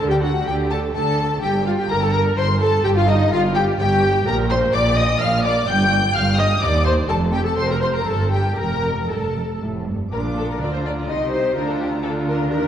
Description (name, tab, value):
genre	quick classical-period movement for string orchestra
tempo	126 BPM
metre	3/4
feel	rubato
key	G minor, Bb major from 4.3 s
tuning	A4 = 440 Hz
part	dark studio violin section	melody	0.0-12.6 s	Eb5 to G6	-24 LUFS	left 4 dB	none
part	warm studio violin section	second line	0.0-12.7 s	Eb4 to G5	-25 LUFS	left 2 dB	none
part	rich studio viola section	accompaniment	0.0-12.7 s	D4 to G5	-23 LUFS	equal	none
part	rich studio double bass section	bass	0.0-12.7 s	F1 to Eb2	-24 LUFS	right 2 dB	none
part	warm studio cello section	bass	0.0-12.7 s	Eb2 to Eb3	-24 LUFS	right 2 dB	none
room	wet scoring stage reverb, RT60 1.9 s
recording	worn, warbling old tape, cassette tape, warbly pitch drift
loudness	-17 LUFS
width	side -9 dB against mid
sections	0.0-10.1 A section; 10.1-12.7 B section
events	none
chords	0.0 D5; 1.4 Gsus2; 4.3 Bbadd9; 5.7 Ebadd9/G; 6.6 Cm/Eb; 7.1 Fadd11; 8.1 Gsus2; 8.6 F; 10.1 Bb; 11.1 Cm; 11.6 Bb/D